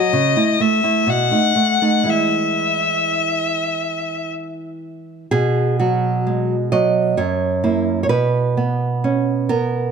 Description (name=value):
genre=romantic duo for violin and classical guitar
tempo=53-67 BPM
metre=3/4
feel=rubato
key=E major, B major from 5.3 s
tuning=A4 = 437 Hz
part: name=clear violin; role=melody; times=0.0-4.3 s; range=D#5 to F#5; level=-18 LUFS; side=left 4 dB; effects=none
part: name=nylon-string guitar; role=accompaniment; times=0.0-9.9 s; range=F#2 to D#5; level=-18 LUFS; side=right 3 dB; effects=none
room=light reverb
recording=close, detailed microphones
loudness=-16 LUFS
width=side -6 dB against mid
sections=0.0-5.3 A section; 5.3-9.9 B section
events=none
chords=0.1 A/C#; 1.1 B7; 2.1 E; 5.3 B5; 7.2 F#7; 8.1 B5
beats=0.14 1.07 | 2.07 3.19 4.26 | 5.31 6.26 7.18 | 8.10 9.03